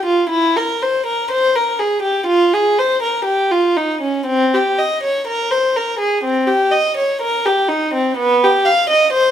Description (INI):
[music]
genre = classical, baroque-style suite movement for unaccompanied violin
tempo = 61 BPM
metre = 4/4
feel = rubato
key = unclear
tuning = A4 = 439 Hz
[part]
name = warm violin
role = solo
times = 0.0-9.3 s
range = B3 to F5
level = -14 LUFS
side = equal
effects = none
[sound]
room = moderate stone room reverb, RT60 1.0 s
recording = heard from further back in the room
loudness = -14 LUFS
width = side -10 dB against mid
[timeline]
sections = 0.0-9.3 A section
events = none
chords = none